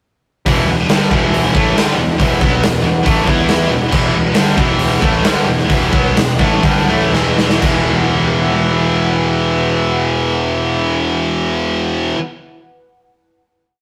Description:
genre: hard rock.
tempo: 116-139 BPM.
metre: 4/4.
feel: straight.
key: unclear.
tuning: A4 = 440 Hz.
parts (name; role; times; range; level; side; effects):
hollow soft pad; sustained chords; 0.4-12.1 s; E4 to F#5; -28 LUFS; equal; chorus.
heavy high-gain guitar; riff; 0.5-12.2 s; E2 to E4; -22 LUFS; equal; distortion.
tight distorted guitar; riff; 0.5-12.2 s; E2 to E4; -20 LUFS; equal; distortion.
fuzz picked electric bass; bass; 0.5-12.1 s; E1 to E2; -21 LUFS; equal; overdrive.
huge arena drum kit; drums; 0.5-7.7 s; crash cymbal, hi-hat, kick drum, snare drum; -18 LUFS; equal; none.
room: moderate stone room reverb, RT60 1.0 s.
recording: rough rehearsal-room recording, warm saturation.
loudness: -14 LUFS.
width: mono.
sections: 0.5-7.6 riff; 7.6-11.7 final chord.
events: slowing down 3.9-7.6; drum fill 7.1-7.6.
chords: 0.5 E5.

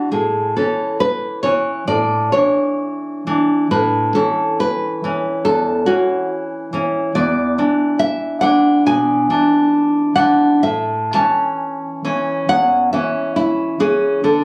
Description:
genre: romantic piece for solo classical guitar.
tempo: 68 BPM.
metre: 4/4.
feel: uneven beats, rubato.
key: A major.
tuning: A4 = 440 Hz.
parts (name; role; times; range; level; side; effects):
nylon-string guitar; solo; 0.0-14.4 s; E2 to A5; -17 LUFS; equal; none.
room: light reverb.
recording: recorded on a phone in the room, club reverb, compression.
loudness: -17 LUFS.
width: mono.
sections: 0.0-14.4 A section.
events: none.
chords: 0.1 A; 1.9 Aadd11; 3.7 A; 7.2 E7; 10.6 A.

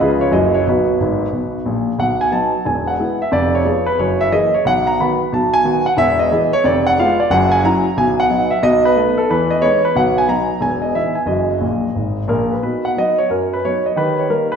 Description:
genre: jazz, stride piano.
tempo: 180 BPM.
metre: 4/4.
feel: swing 64% on 8ths.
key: B major.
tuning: A4 = 439 Hz.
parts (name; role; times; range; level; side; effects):
warm grand piano; solo; 0.0-14.6 s; E1 to B5; -14 LUFS; equal; none.
room: wet scoring stage reverb, RT60 1.5 s.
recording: recorded in a church or concert hall.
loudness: -14 LUFS.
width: side -7 dB against mid.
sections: 0.0-2.0 A section; 2.0-12.6 B section; 12.6-14.6 A section.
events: grand piano fill 1.0-2.0, 11.6-12.6.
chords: 0.0 C#7; 0.3 F#7; 0.6 B; 2.0 B7; 2.6 E; 3.3 Fdim; 4.0 F#9; 4.6 B; 6.0 E; 6.6 Fdim; 7.3 F#7; 8.0 B; 8.6 B7; 9.3 Emaj7; 10.0 B; 10.6 E5; 11.3 F#6; 12.0 G#madd9; 12.6 B; 14.0 D#.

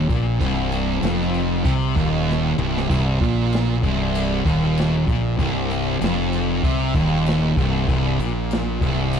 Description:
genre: stoner and doom metal.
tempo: 96 BPM.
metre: 4/4.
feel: straight.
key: C minor.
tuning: A4 = 440 Hz.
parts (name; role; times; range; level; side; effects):
thick fuzz guitar; riff; 0.0-9.2 s; C2 to C3; -20 LUFS; equal; distortion.
fuzz fingered electric bass; bass; 0.0-9.2 s; C1 to C2; -26 LUFS; equal; overdrive.
jazz brush drum kit; drums; 0.1-9.2 s; crash cymbal, kick drum, snare drum, toms; -26 LUFS; equal; none.
room: small room ambience.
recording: dark, warm production.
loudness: -18 LUFS.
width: side -7 dB against mid.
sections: 0.0-9.2 A section.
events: drum fill 2.3-2.9.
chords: 0.0 Cm.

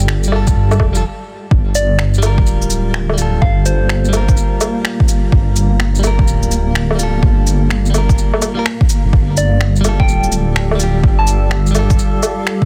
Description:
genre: future garage.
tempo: 126 BPM.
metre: 4/4.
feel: swing 64% on 16ths.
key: G minor.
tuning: A4 = 439 Hz.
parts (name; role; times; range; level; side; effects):
direct-recorded clean electric guitar; accompaniment; 0.0-12.7 s; G3 to Bb4; -25 LUFS; equal; vintage 12-bit sampler grit, sidechain pumping, tape echo.
granular cloud pad; sustained chords; 0.0-12.7 s; G3 to F5; -28 LUFS; equal; built-in reverb, sidechain pumping.
dark detuned saw bass; bass; 0.0-12.0 s; D1 to G2; -17 LUFS; equal; sidechain pumping.
electronic shaker, finger snaps, woodblock and cabasa; drums; 0.0-12.6 s; none; -24 LUFS; equal; overdrive, soft clipping on snare.
electronic kick drum; drums; 0.5-12.7 s; none; -16 LUFS; equal; overdrive.
soft struck synth lead; melody; 1.8-4.3, 9.4-11.5 s; C5 to A5; -25 LUFS; equal; chorus, dub echo.
room: little or no reverb.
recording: dense, heavily limited modern master, vinyl crackle.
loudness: -14 LUFS.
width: mono.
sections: 0.0-1.5 A section; 1.5-12.7 B section.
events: break 1.0-1.5.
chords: 0.0 F; 1.5 Gm7; 9.1 F.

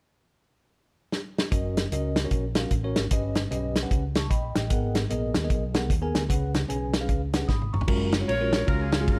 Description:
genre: uptempo gospel.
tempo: 151 BPM.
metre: 4/4.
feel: swing 63% on 8ths.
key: F# major.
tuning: A4 = 440 Hz.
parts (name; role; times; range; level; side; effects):
warm soul drum kit; drums; 1.1-9.2 s; crash cymbal, hi-hat, kick drum, ride cymbal, snare drum, toms; -28 LUFS; equal; none.
bell-like tine electric piano; accompaniment; 1.5-9.2 s; G2 to D#6; -33 LUFS; equal; none.
fingered electric bass; bass; 1.5-9.2 s; F#1 to D#2; -32 LUFS; equal; none.
bright saxophone section; melody; 8.3-9.2 s; C#4 to C#5; -30 LUFS; equal; none.
room: light reverb.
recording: none.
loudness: -26 LUFS.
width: mono.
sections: 0.0-1.5 A section; 1.5-7.9 B section; 7.9-9.2 C section.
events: drum fill 1.1-1.5, 7.5-7.9; tine electric piano fill 4.1-4.7.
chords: 0.0 N.C.; 1.5 F#6; 3.1 D#7alt/G; 4.7 G#m9; 6.3 C#7sus4; 7.9 F#maj9.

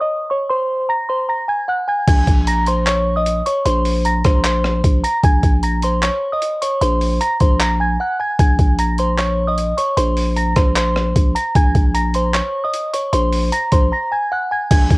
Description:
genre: hip hop, trap.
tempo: 152 BPM.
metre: 4/4.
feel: half-time.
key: Bb minor.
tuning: A4 = 438 Hz.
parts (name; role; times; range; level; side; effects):
glassy synth bell; melody; 0.0-15.0 s; C5 to Bb6; -18 LUFS; equal; chorus, low-pass filter, cassette tape.
growling 808-style bass; bass; 2.1-15.0 s; Bb1; -18 LUFS; equal; none.
breakbeat sampler-style drum kit; drums; 2.1-15.0 s; crash cymbal, handclaps, hi-hat, kick drum, rim click; -16 LUFS; equal; cassette tape.
room: little or no reverb.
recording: home recording on cassette.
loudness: -14 LUFS.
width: side -23 dB against mid.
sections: 0.0-2.1 A section; 2.1-14.7 B section.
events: break 8.0-8.4, 13.9-14.7.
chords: 0.5 Gb; 2.1 Bbm7.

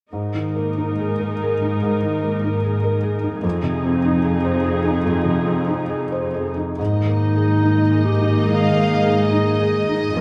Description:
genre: cinematic, emotional film score for orchestra.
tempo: 72 BPM.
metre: 4/4.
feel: uneven beats, rubato.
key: unclear.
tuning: A4 = 440 Hz.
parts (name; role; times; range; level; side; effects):
felt-muted upright piano; accompaniment; 0.1-10.2 s; F2 to C5; -24 LUFS; equal; none.
warm studio viola section; accompaniment; 0.1-10.2 s; Bb3 to Bb4; -28 LUFS; equal; none.
warm studio cello section; bass; 0.1-10.2 s; F2 to Ab2; -25 LUFS; equal; none.
dark studio violin section; melody; 6.8-10.2 s; Eb5; -30 LUFS; equal; none.
mellow clarinet; second line; 6.8-10.2 s; Eb4 to Bb4; -24 LUFS; equal; none.
concert harp; arpeggios; 6.8-10.2 s; F2 to Bb4; -28 LUFS; equal; none.
warm studio violin section; second line; 8.5-10.2 s; Eb5 to F5; -27 LUFS; equal; none.
room: moderate scoring stage reverb, RT60 1.5 s.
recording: none.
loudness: -20 LUFS.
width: mono.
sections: 0.1-6.8 A section; 6.8-10.2 B section.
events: none.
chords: 0.1 Absus2; 3.4 Fm7; 6.8 Absus2.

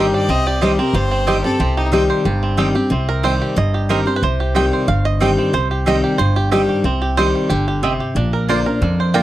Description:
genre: bluegrass.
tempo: 183 BPM.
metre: 4/4.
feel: straight.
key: C minor.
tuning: A4 = 440 Hz.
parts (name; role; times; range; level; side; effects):
bluegrass banjo; melody; 0.0-9.2 s; C4 to G5; -22 LUFS; right 4 dB; none.
clear fiddle; melody; 0.0-1.9 s; Eb4 to Eb5; -24 LUFS; left 2 dB; tape echo.
picked steel-string acoustic guitar; accompaniment; 0.0-9.2 s; F2 to G4; -18 LUFS; left 2 dB; none.
mandolin; stabs; 0.0-9.2 s; Bb3 to Bb5; -20 LUFS; right 6 dB; none.
upright bass; bass; 0.0-9.2 s; G1 to F2; -20 LUFS; equal; none.
room: little or no reverb.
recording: dry, close 1970s-style studio recording.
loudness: -14 LUFS.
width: side -14 dB against mid.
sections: 0.0-2.9 A section; 2.9-9.2 B section.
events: five-string banjo solo 2.9-9.2.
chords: 0.0 Cm; 8.2 Bb.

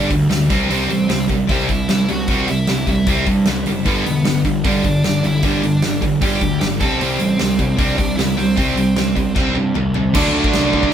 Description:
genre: punk rock.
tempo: 152 BPM.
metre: 4/4.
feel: straight.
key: unclear.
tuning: A4 = 441 Hz.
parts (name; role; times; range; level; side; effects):
smooth overdriven lead guitar; melody; 0.0-10.9 s; B3 to A5; -24 LUFS; right 2 dB; tape echo.
distorted electric guitar; riff; 0.0-10.9 s; G2 to D4; -20 LUFS; right 6 dB; overdrive.
overdriven electric guitar; riff; 0.0-10.9 s; G2 to F#4; -20 LUFS; left 3 dB; none.
fuzz picked electric bass; bass; 0.0-10.8 s; E1 to C3; -23 LUFS; equal; overdrive.
big rock drum kit; drums; 0.1-10.9 s; crash cymbal, hi-hat, kick drum, snare drum, toms; -21 LUFS; equal; none.
overdriven electric guitar; riff; 10.1-10.9 s; D3 to D4; -21 LUFS; equal; none.
room: moderate studio reverb, RT60 0.7 s.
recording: band playing live in one room.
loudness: -14 LUFS.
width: side -9 dB against mid.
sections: 0.0-10.2 A section.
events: drum fill 9.4-10.2.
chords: 0.0 G5; 0.5 C; 3.9 G; 6.8 C5; 10.2 D.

